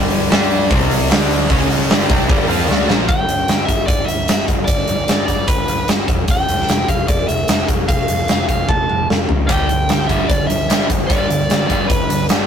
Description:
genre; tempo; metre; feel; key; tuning
hard rock; 150 BPM; 4/4; straight; unclear; A4 = 435 Hz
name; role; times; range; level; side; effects
distorted electric guitar; riff; 0.0-3.1, 9.5-12.5 s; G2 to G4; -21 LUFS; left 6 dB; overdrive
sludgy distorted guitar; riff; 0.0-3.1, 9.5-12.5 s; G2 to G4; -22 LUFS; right 7 dB; overdrive
fuzz picked electric bass; bass; 0.0-12.4 s; E1 to G2; -22 LUFS; equal; overdrive
huge arena drum kit; drums; 0.1-12.4 s; hi-hat, kick drum, snare drum, toms; -16 LUFS; equal; none
biting lead guitar; melody; 3.1-12.3 s; B4 to A5; -20 LUFS; equal; overdrive
room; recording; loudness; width
light reverb; rough rehearsal-room recording, tube saturation; -14 LUFS; side -8 dB against mid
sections
0.0-3.1 A section; 3.1-12.5 B section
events
drum fill 2.7-3.1, 8.7-9.5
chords
0.0 G5; 0.7 C5; 1.1 D5; 1.5 C#5; 1.9 G5; 6.3 N.C.; 9.5 G5

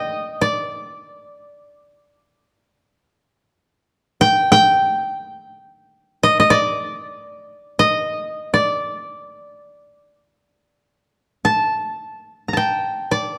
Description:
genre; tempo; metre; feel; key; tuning
japanese traditional, Japanese chamber music; free time; none; none; G hirajoshi; A4 = 438 Hz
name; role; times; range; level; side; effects
koto; solo; 0.0-13.4 s; D5 to Bb5; -19 LUFS; equal; none
room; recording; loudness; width
moderate recital hall reverb, RT60 1.5 s; dark, warm production; -19 LUFS; mono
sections
0.0-13.4 A section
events
none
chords
none

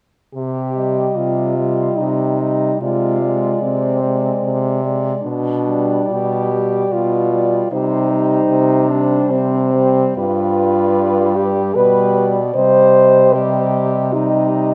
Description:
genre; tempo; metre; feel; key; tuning
classical, lyrical piece for horn quartet; 74 BPM; 3/4; uneven beats, rubato; C minor; A4 = 438 Hz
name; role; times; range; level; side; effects
mellow French horn; second line; 0.3-14.7 s; C4 to C5; -19 LUFS; equal; none
warm French horn; bass; 0.3-14.7 s; G2 to C3; -22 LUFS; equal; none
mellow French horn; melody; 0.8-14.7 s; B4 to Eb5; -24 LUFS; equal; none
warm French horn; accompaniment; 0.8-14.7 s; G3 to Ab3; -24 LUFS; equal; none
room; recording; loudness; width
moderate scoring stage reverb, RT60 1.9 s; none; -16 LUFS; mono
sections
0.3-14.7 A section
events
none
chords
0.3 Cm; 2.8 Dm7b5/C; 5.2 G7/B; 7.7 Cm; 10.2 G7; 12.6 Cm

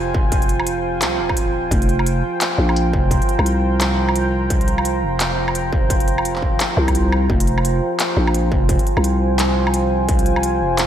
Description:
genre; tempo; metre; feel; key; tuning
half-time drum and bass; 172 BPM; 4/4; swing 60% on 16ths, half-time; F minor; A4 = 440 Hz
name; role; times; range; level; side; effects
deep dark ambient pad; sustained chords; 0.0-10.9 s; F4 to Bb5; -21 LUFS; right 2 dB; chorus, built-in reverb, sidechain pumping
growling 808-style bass; bass; 0.0-10.9 s; Eb1 to C2; -20 LUFS; equal; none
electronic kick drum; drums; 0.1-10.2 s; none; -19 LUFS; equal; distortion
organic electronic drum kit; drums; 0.3-10.9 s; handclaps, hi-hat, woodblock; -24 LUFS; equal; overdrive
room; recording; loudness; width
moderate lush hall reverb, RT60 1.9 s; dreamy mix soaked in reverb; -16 LUFS; side -10 dB against mid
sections
0.0-10.9 A section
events
none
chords
0.0 Fmadd9

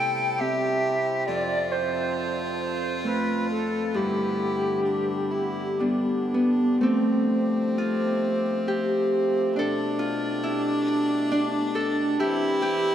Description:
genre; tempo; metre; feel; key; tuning
celtic folk, Celtic slow air; 60-69 BPM; 3/4; rubato; unclear; A4 = 440 Hz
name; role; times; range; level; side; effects
wooden flute; melody; 0.0-6.3 s; G4 to G5; -28 LUFS; equal; none
clear fiddle; second line; 0.0-12.9 s; C4 to A4; -29 LUFS; equal; none
Celtic harp; accompaniment; 0.0-12.9 s; F2 to A4; -25 LUFS; equal; none
hand-pumped harmonium; sustained chords; 0.0-12.9 s; B2 to C5; -33 LUFS; right 1 dB; none
room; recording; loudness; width
wet cathedral reverb, RT60 5.3 s; in a vast, echoing space; -22 LUFS; side -10 dB against mid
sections
0.0-6.8 A section; 6.8-12.9 B section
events
harp solo 6.8-12.9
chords
0.0 C; 1.3 F; 3.9 G; 6.8 Fadd9; 9.5 Gadd9; 12.2 C

